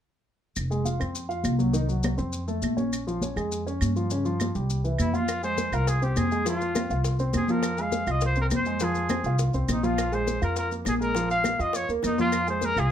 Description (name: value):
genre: Afro-Cuban jazz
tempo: 204 BPM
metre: 4/4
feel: straight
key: F minor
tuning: A4 = 439 Hz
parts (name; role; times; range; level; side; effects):
- upright bass; bass; 0.6-12.9 s; F1 to G2; -28 LUFS; equal; none
- claves; percussion; 0.6-12.9 s; none; -39 LUFS; right 6 dB; none
- congas; percussion; 0.6-12.9 s; none; -30 LUFS; left 1 dB; none
- maracas; percussion; 0.6-12.9 s; none; -38 LUFS; left 6 dB; none
- dark concert grand piano; accompaniment; 0.7-12.9 s; Db3 to F5; -30 LUFS; right 1 dB; none
- warm trumpet; melody; 5.0-12.9 s; Eb4 to F5; -28 LUFS; equal; none
- bongos; percussion; 5.3-12.9 s; none; -36 LUFS; left 6 dB; none
room: moderate club reverb, RT60 0.6 s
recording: none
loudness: -24 LUFS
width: side -9 dB against mid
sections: 0.6-5.3 A section; 5.3-12.9 B section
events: none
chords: 0.6 Fm; 1.7 Cdim; 2.3 F; 2.9 Bbm7; 4.1 Dbmaj7#11; 4.7 C; 5.3 Fm; 10.0 Bb5; 12.3 Fm